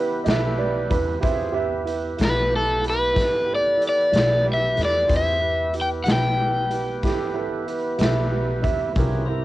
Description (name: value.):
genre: slow blues.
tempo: 62 BPM (dotted quarters).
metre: 12/8.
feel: straight.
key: E minor.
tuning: A4 = 437 Hz.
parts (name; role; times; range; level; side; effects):
dark upright piano; second line; 0.0-9.4 s; G4 to E5; -27 LUFS; right 6 dB; none.
warm grand piano; accompaniment; 0.0-9.4 s; E4 to B4; -30 LUFS; right 6 dB; none.
tonewheel organ; sustained chords; 0.0-9.4 s; B3 to Bb5; -31 LUFS; left 1 dB; slow rotary speaker.
upright bass; bass; 0.0-9.4 s; B1 to E3; -27 LUFS; left 1 dB; none.
raw garage drum kit; drums; 0.3-9.1 s; hi-hat, kick drum, snare drum; -26 LUFS; left 1 dB; cassette tape.
crunchy overdriven guitar; melody; 2.3-7.0 s; A4 to G5; -20 LUFS; left 1 dB; cassette tape.
room: light reverb.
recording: home recording on cassette.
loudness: -19 LUFS.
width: side -16 dB against mid.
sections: 0.0-9.4 A section.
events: none.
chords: 0.0 Em.